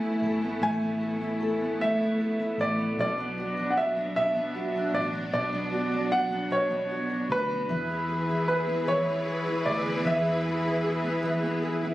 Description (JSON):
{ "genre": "pop", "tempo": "51 BPM (dotted quarters)", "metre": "6/8", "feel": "straight", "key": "unclear", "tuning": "A4 = 440 Hz", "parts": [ { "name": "warm concert grand piano", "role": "melody", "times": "0.0-11.6 s", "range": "B4 to G#5", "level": "-28 LUFS", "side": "equal", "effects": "none" }, { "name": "fingerpicked steel-string acoustic guitar", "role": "accompaniment", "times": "0.0-11.9 s", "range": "B2 to A4", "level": "-30 LUFS", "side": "equal", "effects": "double-tracked left and right" }, { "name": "rich symphonic string section", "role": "sustained chords", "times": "0.0-11.9 s", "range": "E3 to B4", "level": "-32 LUFS", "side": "equal", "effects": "none" }, { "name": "vintage muted fingered electric bass", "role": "bass", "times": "0.0-11.9 s", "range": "G#1 to E2", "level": "-39 LUFS", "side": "equal", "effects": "none" } ], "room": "light reverb", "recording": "recorded on a phone in the room, studio reverb", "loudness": "-25 LUFS", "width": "side -15 dB against mid", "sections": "0.0-11.9 A section", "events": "none", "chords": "0.0 Asus2; 3.0 Bm; 7.7 E" }